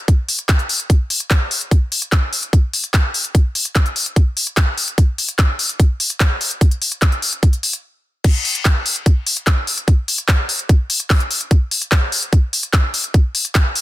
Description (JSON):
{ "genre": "trance", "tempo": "147 BPM", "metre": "4/4", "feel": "straight", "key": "none", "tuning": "none", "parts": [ { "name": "electronic kick drum", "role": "drums", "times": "0.1-13.6 s", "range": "none", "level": "-13 LUFS", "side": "equal", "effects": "none" }, { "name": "techno drum kit", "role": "drums", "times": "0.1-13.8 s", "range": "crash cymbal, handclaps, hi-hat", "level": "-18 LUFS", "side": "left 1 dB", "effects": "none" } ], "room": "little or no reverb", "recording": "dense, heavily limited modern master", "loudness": "-14 LUFS", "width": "side -16 dB against mid", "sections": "0.0-8.2 A section; 8.2-13.8 B section", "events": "stop 7.8-8.2; drop 8.2-13.8", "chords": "none" }